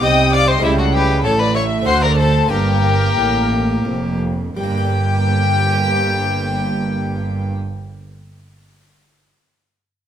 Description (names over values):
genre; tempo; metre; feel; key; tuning
classical, baroque-style concerto movement with solo episodes; 83-100 BPM; 3/4; straight; G minor; A4 = 440 Hz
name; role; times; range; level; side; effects
rich chamber violin section; melody; 0.0-7.6 s; E5 to Eb6; -22 LUFS; left 9 dB; none
rich violin; melody; 0.0-7.6 s; E4 to G5; -21 LUFS; left 2 dB; none
warm chamber violin section; second line; 0.0-7.6 s; G4 to G5; -25 LUFS; left 1 dB; none
dark studio viola section; accompaniment; 0.0-7.6 s; G3 to Bb3; -25 LUFS; right 2 dB; none
harpsichord; accompaniment; 0.0-7.8 s; F2 to D5; -26 LUFS; equal; none
dark chamber cello section; bass; 0.0-7.6 s; F2 to D3; -21 LUFS; right 3 dB; none
rich chamber double bass section; bass; 0.0-7.6 s; F1 to D2; -22 LUFS; right 2 dB; none
room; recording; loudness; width
moderate recital hall reverb, RT60 1.7 s; close, detailed microphones; -14 LUFS; side -9 dB against mid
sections
0.0-4.6 A section; 4.6-8.9 B section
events
slowing down 0.0-4.6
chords
0.0 Cm; 0.6 A7/C#; 1.9 D7; 2.5 Gm